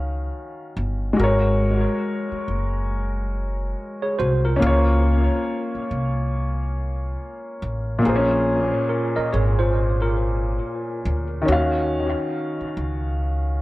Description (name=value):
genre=lo-fi hip hop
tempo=70 BPM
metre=4/4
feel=swing 62% on 16ths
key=Bb minor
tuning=A4 = 439 Hz
part: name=warm upright piano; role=accompaniment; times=0.0-13.6 s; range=Bb2 to F5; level=-23 LUFS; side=left 1 dB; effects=cassette tape, low-pass filter, analog delay
part: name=upright bass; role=bass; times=0.0-13.6 s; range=Gb1 to Eb2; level=-22 LUFS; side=equal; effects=none
part: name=tine electric piano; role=second line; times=4.0-11.3 s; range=F4 to Eb5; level=-26 LUFS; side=right 1 dB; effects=overdrive, fast stereo tremolo, low-pass filter, analog delay
room=moderate spring reverb, RT60 1.4 s, small room ambience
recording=echo-heavy mix, cassette tape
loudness=-20 LUFS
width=side -18 dB against mid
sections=0.0-13.6 A section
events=none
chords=0.0 Ebm9; 1.2 Ab9sus4; 4.6 Db6; 8.0 Bbm7; 11.5 Ebm9